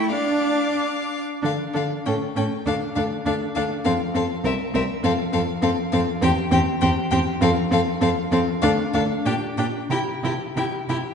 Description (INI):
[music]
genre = quick classical-period movement for string quartet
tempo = 90-102 BPM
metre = 2/4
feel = rubato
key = D minor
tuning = A4 = 439 Hz
[part]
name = clear violin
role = melody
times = 0.0-11.0 s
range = E5 to D6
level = -28 LUFS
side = left 7 dB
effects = none
[part]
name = rich violin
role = second line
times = 0.0-11.0 s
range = G4 to G5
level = -27 LUFS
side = left 3 dB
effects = none
[part]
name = rich viola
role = accompaniment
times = 0.0-11.0 s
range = A3 to E4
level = -24 LUFS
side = right 1 dB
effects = none
[part]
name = rich cello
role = bass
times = 0.0-11.0 s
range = C2 to E4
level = -25 LUFS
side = right 2 dB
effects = none
[sound]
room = wet scoring stage reverb, RT60 1.8 s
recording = heard from further back in the room, nothing above 10.4 kHz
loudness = -20 LUFS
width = side -6 dB against mid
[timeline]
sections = 0.0-1.4 A section; 1.4-11.1 B section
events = none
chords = 0.1 Dm; 2.1 A; 2.7 Dm; 3.9 F5; 4.4 C; 5.0 F; 6.2 C/E; 7.4 F; 8.6 D5; 9.3 Gm; 9.9 C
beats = | 0.12 0.78 | 1.44 2.06 | 2.66 3.26 | 3.86 4.45 | 5.04 5.63 | 6.23 6.82 | 7.42 8.01 | 8.63 9.26 | 9.91 10.56